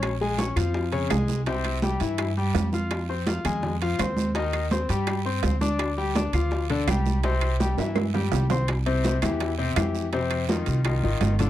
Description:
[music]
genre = latin, salsa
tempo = 166 BPM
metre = 4/4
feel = straight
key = unclear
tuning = A4 = 435 Hz
[part]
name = bright concert grand piano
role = accompaniment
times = 0.0-11.5 s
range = C3 to F6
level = -27 LUFS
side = left 4 dB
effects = none
[part]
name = upright bass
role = bass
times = 0.0-11.5 s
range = G1 to G2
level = -26 LUFS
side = right 1 dB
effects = none
[part]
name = bongos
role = percussion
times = 0.0-11.5 s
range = none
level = -34 LUFS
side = left 2 dB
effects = none
[part]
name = claves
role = percussion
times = 0.0-11.0 s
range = none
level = -36 LUFS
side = left 4 dB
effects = none
[part]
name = congas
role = percussion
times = 0.0-11.5 s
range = none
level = -30 LUFS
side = right 2 dB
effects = none
[part]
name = guiro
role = percussion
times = 0.0-11.5 s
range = none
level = -40 LUFS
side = right 21 dB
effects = none
[part]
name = timbales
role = percussion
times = 0.0-11.5 s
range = none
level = -32 LUFS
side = right 16 dB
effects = none
[sound]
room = little or no reverb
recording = dry, close 1970s-style studio recording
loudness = -22 LUFS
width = side -13 dB against mid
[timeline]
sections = 0.0-8.7 A section; 8.7-11.5 B section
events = drum fill 7.8-8.7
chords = 0.0 Bbm7; 1.5 C; 2.9 Fm; 4.4 Cm/Eb; 5.8 G5/D; 7.2 C; 10.1 Fm7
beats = | 0.02 0.38 0.74 1.10 | 1.47 1.83 2.19 2.55 | 2.91 3.27 3.63 3.99 | 4.35 4.71 5.08 5.44 | 5.80 6.16 6.52 6.88 | 7.24 7.60 7.96 8.33 | 8.69 9.05 9.41 9.77 | 10.13 10.49 10.85 11.22

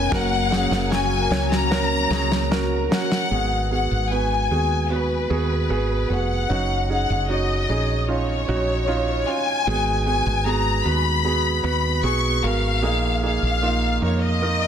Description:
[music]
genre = pop ballad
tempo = 76 BPM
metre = 4/4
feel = straight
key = unclear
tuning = A4 = 440 Hz
[part]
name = warm studio violin section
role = melody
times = 0.0-14.7 s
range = Cb5 to Db6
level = -24 LUFS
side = left 4 dB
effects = none
[part]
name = warm concert grand piano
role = accompaniment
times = 0.0-14.7 s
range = Ab2 to Db5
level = -25 LUFS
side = right 5 dB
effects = none
[part]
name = chorused pulse-width pad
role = sustained chords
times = 0.0-3.3 s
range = Gb3 to Db4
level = -30 LUFS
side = left 2 dB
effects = none
[part]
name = fingerpicked plugged-in steel-string acoustic guitar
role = arpeggios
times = 0.0-3.9 s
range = B2 to B4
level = -32 LUFS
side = left 4 dB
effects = none
[part]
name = woody fretless electric bass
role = bass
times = 0.0-14.7 s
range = F1 to F2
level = -24 LUFS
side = equal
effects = none
[part]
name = modern studio drum kit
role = drums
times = 0.1-3.3 s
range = kick drum, snare drum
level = -25 LUFS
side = left 1 dB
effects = none
[sound]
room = light reverb, small room ambience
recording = dense, heavily limited modern master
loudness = -19 LUFS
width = side -8 dB against mid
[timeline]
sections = 0.0-3.3 A section; 3.3-14.7 B section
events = drum fill 0.1-3.3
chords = 0.1 Gb; 3.3 Abm7; 6.5 Ebm7/Gb; 9.7 Abm7; 12.8 Bb7sus4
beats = | 0.12 0.91 1.71 2.51 | 3.32 4.12 4.91 5.71 | 6.51 7.30 8.09 8.88 | 9.67 10.46 11.25 12.04 | 12.83 13.63 14.43

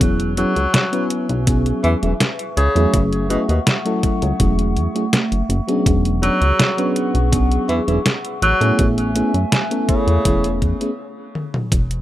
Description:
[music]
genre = vaporwave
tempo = 82 BPM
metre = 4/4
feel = straight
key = unclear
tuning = A4 = 444 Hz
[part]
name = mellow FM electric piano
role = accompaniment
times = 0.0-10.9 s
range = F#3 to B4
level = -21 LUFS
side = equal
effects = wide subtle chorus, tape echo
[part]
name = warbly tape-like pad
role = sustained chords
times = 0.0-12.0 s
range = A3 to C#6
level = -27 LUFS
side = equal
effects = chorus, built-in reverb
[part]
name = chorused synth bass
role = bass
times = 0.0-12.0 s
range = E1 to A2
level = -18 LUFS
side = equal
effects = none
[part]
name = detuned 8-bit digital drum machine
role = drums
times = 0.0-12.0 s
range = cabasa, hi-hat, snare drum, toms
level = -20 LUFS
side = equal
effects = overdrive
[part]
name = electronic kick drum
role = drums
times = 0.0-11.9 s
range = none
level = -19 LUFS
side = equal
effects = overdrive
[part]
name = warm tenor saxophone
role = melody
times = 0.4-10.6 s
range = B2 to F#3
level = -22 LUFS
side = equal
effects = tape echo
[sound]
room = digital ambience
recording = rough home demo mix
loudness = -15 LUFS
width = side -14 dB against mid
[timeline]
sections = 0.0-11.7 A section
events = stop 11.0-11.7; drum fill 11.4-11.7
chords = 0.0 E6; 2.9 F#m7; 5.9 E13; 8.4 Amaj7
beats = | 0.01 0.74 1.48 2.21 | 2.94 3.67 4.40 5.13 | 5.87 6.60 7.33 8.06 | 8.79 9.52 10.26 10.99 | 11.72

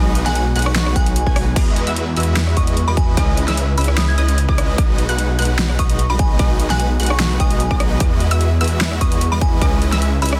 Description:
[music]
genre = future bass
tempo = 149 BPM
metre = 4/4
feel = half-time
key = B major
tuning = A4 = 437 Hz
[part]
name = unison pluck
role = arpeggios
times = 0.0-10.4 s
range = D#6 to G#6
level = -31 LUFS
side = equal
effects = sidechain pumping, tape echo
[part]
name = supersaw chords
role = riff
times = 0.0-10.4 s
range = G#3 to G#5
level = -26 LUFS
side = equal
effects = lush chorus, sidechain pumping
[part]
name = detuned saw bass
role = bass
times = 0.0-10.4 s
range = B1 to E2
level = -20 LUFS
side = equal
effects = chorus, tube saturation, sidechain pumping
[part]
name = big-room dance drum kit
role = drums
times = 0.2-10.4 s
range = crash cymbal, hi-hat, rim click, snare drum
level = -26 LUFS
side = equal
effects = overdrive
[part]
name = glassy synth bell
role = melody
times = 0.3-10.4 s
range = G#5 to G#6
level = -29 LUFS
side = equal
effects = chorus, sidechain pumping, tape echo
[part]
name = electronic kick drum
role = drums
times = 1.0-9.7 s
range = none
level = -20 LUFS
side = equal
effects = overdrive
[sound]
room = little or no reverb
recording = dense, heavily limited modern master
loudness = -17 LUFS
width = mono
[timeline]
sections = 0.0-10.4 A section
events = none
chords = 0.0 B6; 1.6 Emaj9; 3.2 C#m9; 4.8 B6; 8.0 Emaj9; 9.6 C#m9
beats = 0.35 0.76 1.16 | 1.56 1.97 2.37 2.77 | 3.17 3.58 3.98 4.38 | 4.78 5.19 5.59 5.99 | 6.39 6.80 7.20 7.60 | 8.01 8.41 8.81 9.21 | 9.62 10.02

